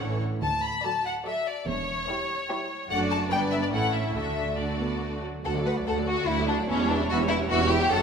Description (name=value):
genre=quick classical-period movement for string orchestra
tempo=145 BPM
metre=3/4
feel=rubato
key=D major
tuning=A4 = 438 Hz
part: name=clear studio violin section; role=second line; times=0.0-8.0 s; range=C#4 to D5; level=-29 LUFS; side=left 2 dB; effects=none
part: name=rich symphonic viola section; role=accompaniment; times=0.0-8.0 s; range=E3 to A4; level=-32 LUFS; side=right 1 dB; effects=none
part: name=rich symphonic cello section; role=bass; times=0.0-8.0 s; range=D2 to D3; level=-32 LUFS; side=right 3 dB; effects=none
part: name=rich symphonic double bass section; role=bass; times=0.0-8.0 s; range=E1 to D2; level=-32 LUFS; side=right 3 dB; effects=none
part: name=bright symphonic violin section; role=melody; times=0.4-8.0 s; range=C#5 to B5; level=-30 LUFS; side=left 3 dB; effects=none
room=wet scoring stage reverb, RT60 1.9 s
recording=minimal, uncompressed stereo recording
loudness=-24 LUFS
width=side -6 dB against mid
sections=0.0-5.4 A section; 5.4-8.0 B section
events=none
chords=0.0 A; 0.4 D; 1.7 C#dim/E; 2.9 D/F#; 3.3 G; 3.7 A; 4.1 D; 6.7 C#dim/E